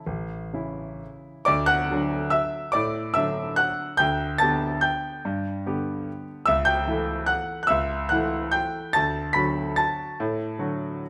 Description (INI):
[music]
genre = classical, piano waltz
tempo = 126-154 BPM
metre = 3/4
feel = rubato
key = D major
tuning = A4 = 439 Hz
[part]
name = clear grand piano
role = solo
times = 0.0-11.1 s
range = A1 to B6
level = -25 LUFS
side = equal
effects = none
[sound]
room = moderate recital hall reverb, RT60 1.4 s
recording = none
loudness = -25 LUFS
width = mono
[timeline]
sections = 0.0-1.5 A section; 1.5-11.1 B section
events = none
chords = 0.0 A; 1.5 D; 4.0 G/D; 6.5 A7/C#; 8.9 D